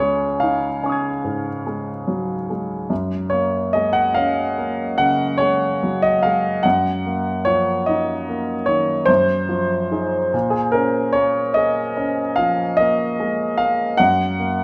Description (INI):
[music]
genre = classical, impressionist solo piano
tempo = 49 BPM (dotted quarters)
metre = 9/8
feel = rubato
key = unclear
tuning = A4 = 444 Hz
[part]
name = clear grand piano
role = solo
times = 0.0-14.6 s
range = Db2 to Ab6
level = -20 LUFS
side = equal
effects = none
[sound]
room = moderate recital hall reverb, RT60 1.7 s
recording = none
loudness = -20 LUFS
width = mono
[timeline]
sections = 0.0-14.6 A section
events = none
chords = 0.0 Dbadd9; 2.9 Gbadd9; 6.6 Ebmadd9/Gb; 9.1 Fm7/Gb; 10.3 Bbm7; 14.0 Gb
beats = 0.40 1.64 | 2.90 4.17 5.40 | 6.64 7.87 9.09 | 10.34 11.56 12.78 | 13.99